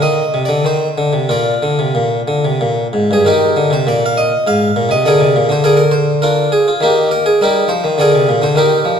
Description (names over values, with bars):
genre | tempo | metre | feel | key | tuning
classical, baroque-style suite movement for harpsichord | 88-106 BPM | 3/4 | rubato | Eb major | A4 = 440 Hz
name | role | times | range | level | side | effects
harpsichord | solo | 0.0-9.0 s | G2 to F5 | -11 LUFS | equal | none
room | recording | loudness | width
wet concert hall reverb, RT60 1.9 s | dark, warm production | -11 LUFS | side -7 dB against mid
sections
0.0-3.3 A section; 3.3-9.0 B section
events
none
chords
0.0 Cm; 1.3 Bb; 3.3 Eb; 4.5 Ab; 5.1 Bb7; 6.8 Eb; 8.0 Bb7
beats
0.62 | 1.27 1.95 2.62 | 3.27 3.88 4.48 | 5.07 5.66 6.25 | 6.85 7.44 8.00 | 8.58